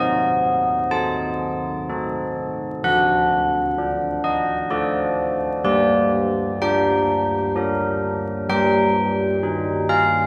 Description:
classical, tune for church bells; 64 BPM; 3/4; straight; G minor; A4 = 436 Hz
carillon bells; solo; 0.0-10.3 s; D3 to A5; -21 LUFS; equal
wet cathedral reverb, RT60 4.5 s; recorded in a church or concert hall, vinyl crackle; -21 LUFS; mono
0.0-10.3 A section
0.0 Adim/C; 2.8 D; 5.6 Gm; 8.5 Cmadd11/G (rootless)

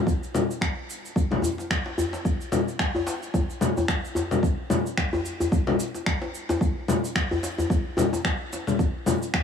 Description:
downtempo; 110 BPM; 4/4; swing 56% on 16ths
electronic cabasa, congas and finger snaps; drums; 0.1-9.4 s; -26 LUFS; left 2 dB
electronic kick drum; drums; 0.1-9.4 s; -25 LUFS; equal
djembe; percussion; 0.3-9.2 s; -29 LUFS; left 2 dB
light reverb, digital ambience; -23 LUFS; side -7 dB against mid
0.0-4.4 A section; 4.4-9.4 B section

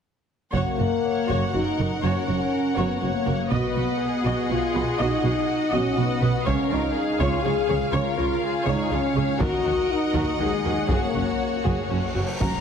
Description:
cinematic, epic orchestral film score; 122 BPM; 3/4; straight; F# major; A4 = 439 Hz
warm symphonic violin section; second line; 0.5-12.5 s; A#4 to F#5; -31 LUFS; left 2 dB
rich symphonic viola section; accompaniment; 0.5-12.5 s; C#4 to D#5; -30 LUFS; equal
warm French horn section; sustained chords; 0.5-12.6 s; F#3 to G#4; -25 LUFS; left 2 dB
clear symphonic double bass section; bass; 0.5-12.5 s; F#1 to D#2; -29 LUFS; right 3 dB
dark symphonic cello section; bass; 0.5-12.5 s; F#2 to D#3; -29 LUFS; right 3 dB
taiko ensemble; drums; 0.5-12.6 s; -31 LUFS; equal
rich symphonic violin section; melody; 1.0-12.6 s; F#4 to A#5; -33 LUFS; left 5 dB
cymbal swell and impact; sound effects; 11.8-12.6 s; -33 LUFS; left 1 dB
wet scoring stage reverb, RT60 2.0 s; heavily compressed radio sound, multiband compression; -21 LUFS; side -7 dB against mid
0.5-12.4 A section
cymbal swell 11.8-12.4; impact 12.4
0.5 F#; 3.5 B; 6.5 C#; 9.4 D#m; 10.9 F#add9

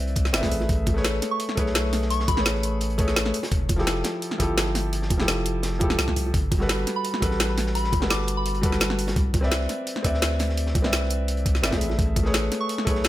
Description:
liquid drum and bass; 170 BPM; 4/4; straight; A4 = 440 Hz
felt-muted upright piano; accompaniment; 0.0-13.1 s; F3 to E5; -27 LUFS; equal; ping-pong delay
long sustained 808-style bass; bass; 0.0-13.1 s; F1 to D2; -26 LUFS; equal
crunchy breakbeat drum kit; drums; 0.1-13.1 s; hi-hat, snare drum; -36 LUFS; equal; high-pass filter on hats, high-pass filter on snare, high-pass filter on room
drum and bass drum kit; drums; 0.2-13.1 s; hi-hat, snare drum; -26 LUFS; equal
electronic kick drum; drums; 0.2-12.9 s; -25 LUFS; equal
bongos; percussion; 0.4-12.2 s; -35 LUFS; right 3 dB
soft synth bell; melody; 1.3-2.8, 7.0-8.6, 12.6-12.8 s; B5 to D6; -31 LUFS; left 1 dB; chorus, phaser, ping-pong delay
light reverb, small room ambience; -21 LUFS; side -14 dB against mid
0.0-13.1 A section
0.0 Cmaj9; 0.5 Amaj9; 3.3 Fmaj9; 6.3 Gmaj9; 9.2 Cmaj9; 11.8 Amaj9

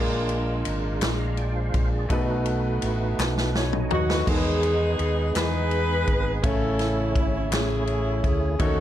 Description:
slow gospel; 56 BPM (dotted quarters); 6/8; straight; E major from 4.3 s; A4 = 440 Hz
clear baby grand piano; accompaniment; 0.0-8.8 s; Bb2 to G#5; -30 LUFS; left 1 dB
percussive tonewheel organ; sustained chords; 0.0-8.8 s; F#3 to Bb5; -30 LUFS; right 4 dB; slow rotary speaker, chorus vibrato
fingered electric bass; bass; 0.0-8.8 s; Ab1 to E2; -27 LUFS; equal
swinging big-band drum kit; drums; 0.3-8.8 s; crash cymbal, kick drum, ride cymbal, snare drum, toms; -27 LUFS; equal
group handclap; percussion; 1.0-7.9 s; -33 LUFS; left 4 dB
warm saxophone section; melody; 3.9-8.8 s; B3 to B4; -27 LUFS; left 1 dB
light reverb, studio ambience; dark, warm production; -22 LUFS; side -12 dB against mid
0.0-4.3 A section; 4.3-8.8 B section
drum fill 3.2-4.3
0.0 Bb7; 2.1 B7; 4.3 Emaj7; 6.4 Amaj7

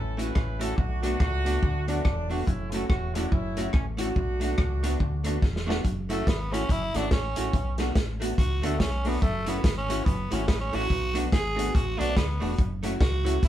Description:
ska; 142 BPM; 4/4; swing 60% on 8ths; F# minor; A4 = 440 Hz
warm horn section; melody; 0.0-5.4 s; F#3 to B4; -33 LUFS; right 1 dB
fingered electric bass; bass; 0.0-13.5 s; E1 to D2; -30 LUFS; equal
archtop guitar, miked and amplified; accompaniment; 0.2-13.3 s; A3 to F#4; -34 LUFS; right 4 dB; slapback echo
warm upright piano; stabs; 0.2-13.4 s; A3 to F#4; -35 LUFS; left 3 dB
vintage drum kit; drums; 0.2-13.5 s; hi-hat, kick drum, rim click, snare drum; -27 LUFS; equal
raspy tenor saxophone; melody; 6.1-13.5 s; A3 to G#4; -30 LUFS; right 1 dB; slapback echo
moderate studio reverb, RT60 0.5 s; band playing live in one room; -24 LUFS; side -12 dB against mid
0.0-5.8 A section; 5.8-13.5 B section
drum fill 5.4-5.8; tenor saxophone solo 5.8-13.5
0.0 F#m7; 0.8 Bm7; 2.5 F#m7; 4.2 Bm7; 5.8 F#m7; 7.5 Bm7; 9.2 F#m7; 10.9 Bm7; 12.6 F#m7

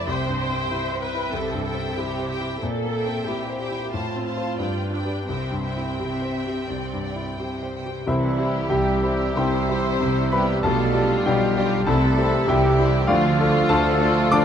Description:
classical, romantic movement for piano and orchestra; 83-100 BPM; 4/4; rubato; C major; A4 = 440 Hz
clear grand piano; melody; 0.0-14.4 s; B1 to D6; -24 LUFS; left 2 dB
rich studio violin section; melody; 0.0-14.4 s; E4 to A5; -34 LUFS; left 2 dB
rich studio violin section; second line; 0.0-14.4 s; E4 to F5; -34 LUFS; left 1 dB
rich studio viola section; accompaniment; 0.0-14.4 s; F3 to C5; -30 LUFS; right 1 dB
clear studio cello section; bass; 0.1-14.4 s; G2 to D3; -30 LUFS; right 2 dB
clear oboe; second line; 8.1-14.4 s; E5 to F5; -32 LUFS; right 1 dB
mellow flute section; second line; 8.1-14.4 s; E4 to D5; -32 LUFS; left 1 dB
warm clarinet; second line; 8.1-14.4 s; G4 to A4; -34 LUFS; left 2 dB
warm bassoon; accompaniment; 8.1-14.4 s; F3 to G3; -31 LUFS; right 3 dB
clear trombone section; sustained chords; 8.1-14.4 s; E3 to A3; -33 LUFS; right 6 dB
dark French horn section; sustained chords; 8.1-14.4 s; E3 to D4; -30 LUFS; left 3 dB
mellow trumpet section; stabs; 8.1-14.4 s; E4 to D5; -32 LUFS; left 1 dB
mellow tuba; bass; 8.1-14.4 s; B1 to D2; -30 LUFS; right 4 dB
warm studio double bass section; bass; 8.1-14.4 s; B1 to D2; -29 LUFS; right 4 dB
moderate concert hall reverb, RT60 2.2 s; close, detailed microphones; -20 LUFS; side -8 dB against mid
0.0-8.1 A section; 8.1-14.4 B section
0.1 C; 2.6 C7/Bb; 3.9 F/A; 4.6 G7; 5.3 C; 10.6 G7/B; 11.9 C; 13.1 Dm

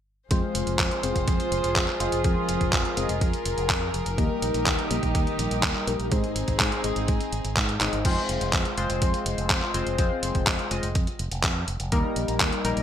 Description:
italo disco; 124 BPM; 4/4; straight; F minor; A4 = 441 Hz
warm chamber string section; sustained chords; 0.3-8.0 s; Eb3 to C5; -29 LUFS; equal
chorused polysynth; stabs; 0.3-12.8 s; Ab2 to Eb5; -28 LUFS; left 2 dB; digital delay
fingered electric bass with an envelope filter; bass; 0.3-12.8 s; F1 to Ab2; -30 LUFS; equal
detuned 8-bit digital drum machine; drums; 0.3-12.8 s; crash cymbal, handclaps, hi-hat; -28 LUFS; equal; gated reverb
electronic kick drum; drums; 0.3-12.5 s; -27 LUFS; equal
moderate plate reverb, RT60 1.1 s, digital ambience; bright 1980s-style digital production, faint mains hum; -22 LUFS; side -10 dB against mid
0.3-8.1 A section; 8.1-12.8 B section
drum fill 7.8
0.3 Fm; 4.2 Eb; 6.1 Ab; 8.1 Fm; 11.9 Eb

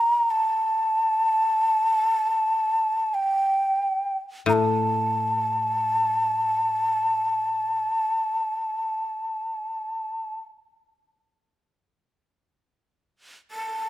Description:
japanese traditional, Japanese chamber music; free time; A4 = 441 Hz
breathy mellow shakuhachi; melody; 0.0-13.9 s; G5 to Bb5; -22 LUFS; equal
koto; accompaniment; 4.5-7.8 s; A2; -26 LUFS; left 4 dB
light reverb; close, detailed microphones; -22 LUFS; side -15 dB against mid
0.0-13.9 A section

